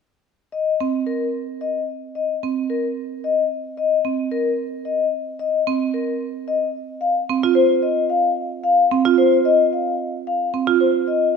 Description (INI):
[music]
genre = classical, minimalist pattern music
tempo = 111 BPM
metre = 3/4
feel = straight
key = unclear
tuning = A4 = 441 Hz
[part]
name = vibraphone with soft mallets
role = melody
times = 0.5-11.3 s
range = Bb4 to F5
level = -20 LUFS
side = left 6 dB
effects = none
[part]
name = marimba with medium hard mallets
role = arpeggios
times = 0.8-10.8 s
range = C4 to F4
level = -22 LUFS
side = right 11 dB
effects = none
[sound]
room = moderate scoring stage reverb, RT60 1.5 s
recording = none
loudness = -18 LUFS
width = side -5 dB against mid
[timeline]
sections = 0.3-11.4 A section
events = none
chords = 0.3 Cm; 6.8 N.C.